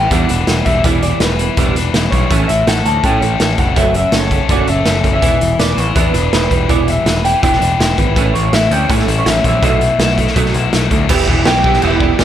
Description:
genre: indie rock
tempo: 164 BPM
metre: 4/4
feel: straight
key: E dorian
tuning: A4 = 440 Hz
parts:
  - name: electric guitar through a small old amp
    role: melody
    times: 0.0-12.2 s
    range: B4 to A5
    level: -18 LUFS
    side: equal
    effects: digital delay
  - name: biting overdriven guitar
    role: riff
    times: 0.0-12.2 s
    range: F#2 to B4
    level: -19 LUFS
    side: left 10 dB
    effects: none
  - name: overdriven electric guitar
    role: riff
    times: 0.0-12.2 s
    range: E3 to G4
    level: -20 LUFS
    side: right 10 dB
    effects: ensemble chorus
  - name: growling picked electric bass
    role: bass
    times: 0.0-12.2 s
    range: E1 to A2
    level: -17 LUFS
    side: equal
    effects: overdrive
  - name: raw garage drum kit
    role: drums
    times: 0.1-12.2 s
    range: crash cymbal, hi-hat, kick drum, snare drum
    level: -16 LUFS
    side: equal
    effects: none
room: light reverb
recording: none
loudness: -11 LUFS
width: side -10 dB against mid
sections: 0.0-11.1 A section; 11.1-12.2 B section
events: none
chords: 0.0 Em7; 2.3 A7; 3.8 F#m7; 5.2 Em7; 8.2 A7; 9.6 B7sus4; 11.1 Em

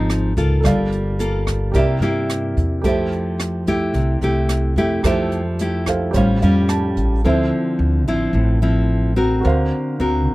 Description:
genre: bossa nova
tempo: 109 BPM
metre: 4/4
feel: straight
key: F major, D minor from 7.2 s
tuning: A4 = 440 Hz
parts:
  - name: dark baby grand piano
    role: accompaniment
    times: 0.0-10.3 s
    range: F#4 to A5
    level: -25 LUFS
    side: right 4 dB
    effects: none
  - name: nylon-string guitar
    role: accompaniment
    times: 0.0-10.3 s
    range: Ab2 to Bb4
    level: -19 LUFS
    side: equal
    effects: none
  - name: upright bass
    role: bass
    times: 0.0-10.3 s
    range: G1 to G2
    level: -20 LUFS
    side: equal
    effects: none
  - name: jazz brush drum kit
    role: drums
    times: 0.1-7.1 s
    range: hi-hat, kick drum, rim click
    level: -26 LUFS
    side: equal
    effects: none
room: light reverb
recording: dry, close 1970s-style studio recording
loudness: -16 LUFS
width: side -19 dB against mid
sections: 0.0-7.2 A section; 7.2-10.3 B section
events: grand piano fill 6.1-7.2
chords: 0.0 Dbmaj9; 0.6 Gm9; 1.7 C7; 2.8 Fmaj9; 6.1 A7alt; 7.2 Dm9; 9.4 D7alt

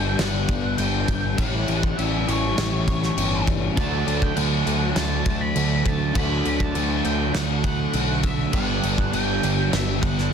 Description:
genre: rock, shoegaze and dream pop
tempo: 101 BPM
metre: 4/4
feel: straight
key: G lydian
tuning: A4 = 438 Hz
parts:
  - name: octave-fuzz lead guitar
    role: melody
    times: 0.0-10.3 s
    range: C#5 to B5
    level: -30 LUFS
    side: right 2 dB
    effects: distortion, tape echo
  - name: crunchy overdriven guitar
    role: riff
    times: 0.0-10.3 s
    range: G2 to E4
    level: -29 LUFS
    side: right 2 dB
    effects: none
  - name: overdriven semi-hollow guitar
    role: riff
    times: 0.0-10.3 s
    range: G2 to G4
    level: -28 LUFS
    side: left 9 dB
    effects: wide subtle chorus
  - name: modern bright picked electric bass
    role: bass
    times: 0.0-10.3 s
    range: G1 to D2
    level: -26 LUFS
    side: equal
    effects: none
  - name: loose indie drum kit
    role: drums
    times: 0.2-10.3 s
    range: crash cymbal, kick drum, snare drum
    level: -25 LUFS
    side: left 1 dB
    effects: none
  - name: overdriven semi-hollow guitar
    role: riff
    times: 3.8-10.3 s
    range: G2 to G4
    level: -28 LUFS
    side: right 13 dB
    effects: reverse reverb
room: little or no reverb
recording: dense, heavily limited modern master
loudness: -20 LUFS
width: side -7 dB against mid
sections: 0.0-10.3 A section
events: none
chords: 0.0 Gmaj7; 1.4 A7; 3.8 D; 8.5 Gmaj7

